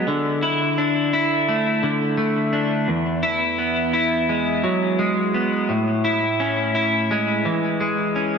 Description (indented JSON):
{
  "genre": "rock",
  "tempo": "85 BPM",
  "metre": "4/4",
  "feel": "straight",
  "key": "A major",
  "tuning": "A4 = 439 Hz",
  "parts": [
    { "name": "clean electric guitar", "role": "solo", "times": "0.0-8.4 s", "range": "E2 to E4", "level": "-18 LUFS", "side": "equal", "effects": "lush chorus, ping-pong delay" }
  ],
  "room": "wet lush hall reverb, RT60 2.1 s",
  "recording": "dreamy mix soaked in reverb, nothing above 7.9 kHz",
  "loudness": "-18 LUFS",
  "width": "side -6 dB against mid",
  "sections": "0.0-8.4 A section",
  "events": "none",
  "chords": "0.1 Dsus2; 2.9 Eadd9; 5.7 Amaj7"
}